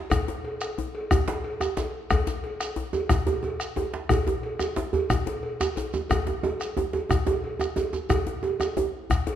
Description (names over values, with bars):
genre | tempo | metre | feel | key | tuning
west african traditional, West African drum ensemble | 120 BPM (dotted quarters) | 12/8 | straight | none | none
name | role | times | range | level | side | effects
bombo | percussion | 0.1-9.3 s | none | -29 LUFS | left 2 dB | none
cowbell | percussion | 0.1-9.4 s | none | -34 LUFS | left 1 dB | none
djembe | percussion | 0.1-9.4 s | none | -30 LUFS | left 4 dB | none
shekere | percussion | 0.1-9.3 s | none | -36 LUFS | right 4 dB | none
djembe | percussion | 1.1-8.9 s | none | -28 LUFS | right 5 dB | none
room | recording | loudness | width
moderate scoring stage reverb, RT60 1.6 s | dark, warm production | -24 LUFS | side -10 dB against mid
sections
0.0-9.4 A section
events
none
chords
none